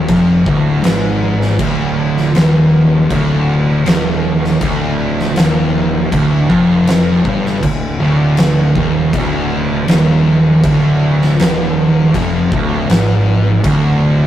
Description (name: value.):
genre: stoner and doom metal.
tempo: 80 BPM.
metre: 4/4.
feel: straight.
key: unclear.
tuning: A4 = 441 Hz.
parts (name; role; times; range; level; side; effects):
fuzz guitar; riff; 0.0-14.3 s; D2 to G#2; -15 LUFS; right 3 dB; distortion.
thick fuzz guitar; riff; 0.0-14.3 s; D2 to G#2; -15 LUFS; left 2 dB; distortion.
fuzz fingered electric bass; bass; 0.0-14.3 s; D1 to G#1; -21 LUFS; equal; overdrive.
oversized low-tuned drum kit; drums; 0.1-13.8 s; crash cymbal, kick drum, snare drum; -17 LUFS; equal; none.
room: light reverb.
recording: rough rehearsal-room recording, warm saturation.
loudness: -11 LUFS.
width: side -12 dB against mid.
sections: 0.0-14.3 A section.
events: none.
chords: 0.0 Dm.